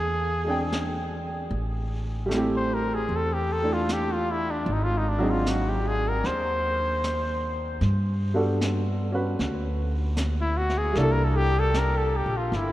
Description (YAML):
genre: jazz ballad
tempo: 76 BPM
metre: 4/4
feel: swing 66% on 8ths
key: unclear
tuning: A4 = 440 Hz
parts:
  - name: clear trumpet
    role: melody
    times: 0.0-12.7 s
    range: D4 to B#4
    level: -28 LUFS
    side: left 1 dB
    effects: none
  - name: upright bass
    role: bass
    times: 0.0-12.7 s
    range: G1 to G2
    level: -27 LUFS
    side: equal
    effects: none
  - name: clear upright piano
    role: accompaniment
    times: 0.4-12.7 s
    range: F#3 to G5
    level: -30 LUFS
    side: right 1 dB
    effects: none
  - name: jazz brush drum kit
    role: drums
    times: 0.7-12.7 s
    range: brushed snare drum, hi-hat, snare drum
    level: -36 LUFS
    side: equal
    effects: none
room: wet cathedral reverb, RT60 6.0 s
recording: in a vast, echoing space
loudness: -23 LUFS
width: side -15 dB against mid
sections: 0.0-1.5 A section; 1.5-12.7 B section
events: trumpet solo 1.5-12.7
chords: 0.0 E7alt; 1.5 Am7; 4.7 G#7#11; 7.8 Gmaj9; 11.0 C13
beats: 0.73 | 1.52 2.31 3.10 3.89 | 4.67 5.46 6.25 7.03 | 7.82 8.60 9.38 10.17 | 10.95 11.74 12.52